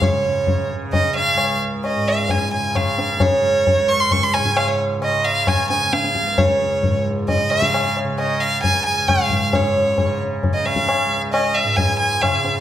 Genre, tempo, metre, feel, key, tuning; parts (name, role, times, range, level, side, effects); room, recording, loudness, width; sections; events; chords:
indian classical, Hindustani; 133 BPM; 7/4; straight; Db raga hamsadhwani; A4 = 435 Hz
clear violin; melody; 0.0-12.6 s; Db5 to Db6; -18 LUFS; right 1 dB
tanpura; drone; 0.0-12.6 s; Db2 to Db3; -25 LUFS; right 1 dB
tabla; percussion; 0.0-12.6 s; -22 LUFS; left 2 dB
wet recital hall reverb, RT60 1.4 s; -16 LUFS; side -11 dB against mid
0.0-12.6 A section